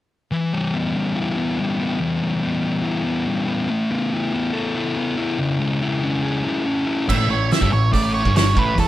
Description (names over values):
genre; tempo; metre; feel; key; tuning
indie rock; 142 BPM; 4/4; straight; A mixolydian; A4 = 441 Hz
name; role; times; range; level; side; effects
thick fuzz guitar; riff; 0.3-8.9 s; G2 to A4; -20 LUFS; left 1 dB; distortion
octave-fuzz lead guitar; melody; 7.1-8.9 s; A4 to E5; -22 LUFS; right 4 dB; distortion
growling picked electric bass; bass; 7.1-8.9 s; G1 to E2; -25 LUFS; right 1 dB; overdrive
loose indie drum kit; drums; 7.1-8.9 s; crash cymbal, hi-hat, kick drum, snare drum; -20 LUFS; right 2 dB; none
room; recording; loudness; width
light reverb, small room ambience; rough home demo mix; -18 LUFS; side -14 dB against mid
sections
0.3-7.1 A section; 7.1-8.9 B section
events
none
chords
0.3 Em; 3.7 Asus2; 5.4 C#m; 7.1 A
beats
| 0.33 0.75 1.17 1.59 | 2.02 2.44 2.86 3.29 | 3.71 4.13 4.55 4.98 | 5.40 5.82 6.24 6.67 | 7.09 7.51 7.93 8.35 | 8.77